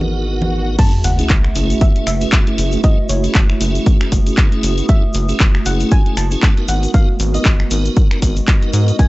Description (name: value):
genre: deep house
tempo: 117 BPM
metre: 4/4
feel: swing 57% on 16ths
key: F# dorian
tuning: A4 = 440 Hz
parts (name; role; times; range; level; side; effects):
- warbly tape-like pad; sustained chords; 0.0-9.1 s; G#3 to D#6; -25 LUFS; right 2 dB; chorus, built-in reverb, vintage 12-bit sampler grit, sidechain pumping
- tonewheel organ; stabs; 0.0-9.1 s; A3 to A#4; -24 LUFS; equal; chorus vibrato, slow rotary speaker, sidechain pumping, low-pass filter, tape echo
- rubbery square bass; bass; 0.0-8.9 s; F#1 to G#2; -18 LUFS; equal; tube saturation, sidechain pumping
- congas; percussion; 0.0-0.5 s; none; -23 LUFS; right 1 dB; none
- swell and sub drop; sound effects; 0.1-2.8 s; none; -23 LUFS; equal; none
- deep dark ambient pad; texture; 0.0-9.1 s; E4 to D#5; -29 LUFS; right 1 dB; chorus, built-in reverb, sidechain pumping
- soft round pluck; melody; 0.8-9.1 s; C#5 to A5; -27 LUFS; equal; lush chorus, tape echo
- electronic kick drum; drums; 0.8-9.1 s; none; -12 LUFS; equal; none
- house drum kit; drums; 0.8-9.1 s; crash cymbal, finger snaps, handclaps, hi-hat; -22 LUFS; equal; none
- tube shaker; percussion; 0.8-9.1 s; none; -31 LUFS; left 1 dB; none
room: little or no reverb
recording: dry, gritty hardware recording, transformer saturation, cassette tape, nothing above 7.9 kHz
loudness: -12 LUFS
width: side -19 dB against mid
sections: 0.8-9.1 A section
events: swell 0.1-0.8; drop 0.8-9.1; impact 0.8-2.8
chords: 0.0 G#m7; 0.8 F#m7; 6.7 G#m7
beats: 0.27 | 0.79 1.30 1.81 2.33 | 2.84 3.35 3.86 4.38 | 4.89 5.40 5.92 6.43 | 6.94 7.45 7.97 8.48 | 8.99